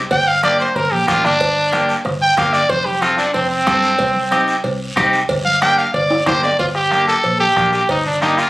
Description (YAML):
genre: latin, cumbia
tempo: 185 BPM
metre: 4/4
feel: straight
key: G minor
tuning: A4 = 441 Hz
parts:
  - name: fingered electric bass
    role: bass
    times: 0.0-8.4 s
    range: F1 to G2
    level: -26 LUFS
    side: equal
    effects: none
  - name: growling trumpet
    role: melody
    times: 0.1-8.5 s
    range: C4 to G5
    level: -15 LUFS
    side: equal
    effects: none
  - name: bombo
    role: percussion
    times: 0.1-8.4 s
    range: none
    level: -26 LUFS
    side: equal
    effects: none
  - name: congas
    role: percussion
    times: 0.1-8.4 s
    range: none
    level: -31 LUFS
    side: equal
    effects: none
  - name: cowbell and timbales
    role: percussion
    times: 0.1-8.1 s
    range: none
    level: -23 LUFS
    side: right 2 dB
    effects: none
  - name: guiro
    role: percussion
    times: 0.1-8.5 s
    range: none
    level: -29 LUFS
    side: right 1 dB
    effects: none
  - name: clean electric guitar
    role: accompaniment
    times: 0.4-8.4 s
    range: Bb3 to A4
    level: -18 LUFS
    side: left 1 dB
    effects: none
room: moderate studio reverb, RT60 0.9 s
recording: recorded on a phone in the room, studio ambience, compression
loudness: -13 LUFS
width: side -18 dB against mid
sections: 0.0-6.6 A section; 6.6-8.5 B section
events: trumpet solo 0.0-6.6; drum fill 6.1-6.6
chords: 0.1 Gm; 2.7 F; 4.0 Cm; 5.3 Gm